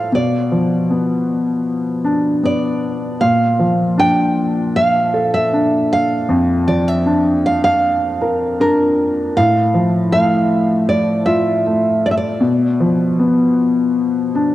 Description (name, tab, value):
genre	acoustic folk-pop ballad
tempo	78 BPM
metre	4/4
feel	straight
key	unclear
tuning	A4 = 440 Hz
part	nylon-string guitar	melody	0.0-14.5 s	Bb4 to G5	-18 LUFS	right 1 dB	cassette tape
part	felt-muted upright piano	accompaniment	0.0-14.5 s	F2 to Bb4	-15 LUFS	left 1 dB	cassette tape
room	moderate lush hall reverb, RT60 2.6 s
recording	home recording on cassette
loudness	-13 LUFS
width	side -15 dB against mid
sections	0.0-14.5 A section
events	none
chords	0.1 Bdim; 3.2 Bbmaj7; 9.4 Dmadd9/A; 12.4 Bdim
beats	| 0.12 0.89 1.66 2.43 | 3.20 3.97 4.74 5.51 | 6.28 7.05 7.82 8.59 | 9.35 10.12 10.89 11.65 | 12.42 13.19 13.96